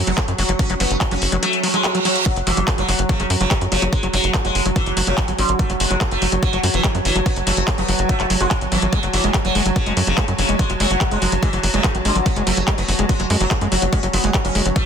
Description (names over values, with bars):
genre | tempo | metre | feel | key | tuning
psychedelic trance | 144 BPM | 4/4 | straight | F# minor | A4 = 441 Hz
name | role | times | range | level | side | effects
evolving wavetable pad | sustained chords | 0.0-14.9 s | F#3 | -27 LUFS | right 3 dB | chorus, built-in reverb, sidechain pumping
tight sequencer bass | bass | 0.0-14.7 s | F#1 to F#2 | -22 LUFS | equal | none
airy breathy pad | texture | 0.0-14.9 s | F#4 to A5 | -29 LUFS | right 2 dB | chorus, sidechain pumping
sitar | melody | 0.1-14.9 s | C#3 to C#4 | -23 LUFS | left 1 dB | phaser, vintage 12-bit sampler grit, sidechain pumping, dub echo
screaming distorted acid line | riff | 0.1-14.8 s | F#3 to F#4 | -25 LUFS | moving between left 3 dB and right 4 dB | distortion, chorus, auto-pan, sidechain pumping, digital delay
techno drum kit | drums | 0.1-14.8 s | handclaps, hi-hat | -23 LUFS | left 1 dB | none
electronic kick drum | drums | 0.2-14.8 s | none | -20 LUFS | equal | none
reverse cymbal | sound effects | 1.6-2.3 s | none | -23 LUFS | right 5 dB | none
room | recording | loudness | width
light reverb | dense, heavily limited modern master | -16 LUFS | side -7 dB against mid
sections
0.0-14.9 A section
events
fade-in on analog synth pad 0.0-14.9; reverse cymbal 1.6-2.3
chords
0.0 F#5